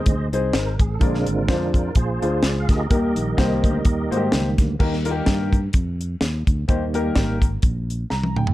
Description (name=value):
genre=uptempo gospel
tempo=127 BPM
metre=4/4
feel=swing 55% on 8ths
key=Eb major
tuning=A4 = 440 Hz
part: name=tonewheel organ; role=sustained chords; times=0.0-7.4 s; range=D3 to F5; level=-26 LUFS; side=right 3 dB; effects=slow rotary speaker, chorus vibrato
part: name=fingered electric bass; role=bass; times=0.1-8.5 s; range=Ab1 to Ab2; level=-24 LUFS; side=equal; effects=none
part: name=tight funk drum kit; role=drums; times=0.1-8.5 s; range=crash cymbal, hi-hat, kick drum, snare drum, toms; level=-21 LUFS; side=equal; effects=none
part: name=warm upright piano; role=accompaniment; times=0.3-8.5 s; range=Bb2 to Bb5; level=-26 LUFS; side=left 4 dB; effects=none
room=little or no reverb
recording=dark, warm production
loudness=-18 LUFS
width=side -16 dB against mid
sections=0.0-4.8 A section; 4.8-8.5 B section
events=tonewheel organ solo 0.0-4.8; upright piano fill 7.9-8.5; drum fill 8.1-8.5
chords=0.0 Ab; 1.0 Bb7; 2.9 Eb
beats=0.07 0.54 | 1.01 1.49 1.96 2.43 | 2.90 3.38 3.85 4.32 | 4.80 5.27 5.74 6.22 | 6.69 7.17 7.64 8.11